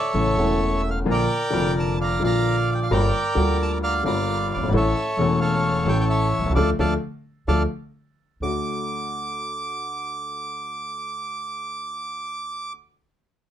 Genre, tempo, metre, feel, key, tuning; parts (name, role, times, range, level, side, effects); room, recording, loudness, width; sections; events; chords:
tango; 131 BPM; 4/4; rubato; D minor; A4 = 439 Hz
bandoneon; melody; 0.0-12.7 s; A4 to D6; -25 LUFS; right 2 dB
warm upright piano; accompaniment; 0.1-12.7 s; E1 to A4; -24 LUFS; left 3 dB
upright bass; bass; 0.1-8.6 s; E1 to D2; -25 LUFS; right 1 dB
light reverb; dark, warm production; -21 LUFS; side -10 dB against mid
0.0-8.4 A section; 8.4-12.1 B section
band accent 6.6-8.4
0.1 A; 1.1 Bb; 2.9 Gm7; 4.7 A; 6.6 Dm; 7.9 N.C.; 8.4 D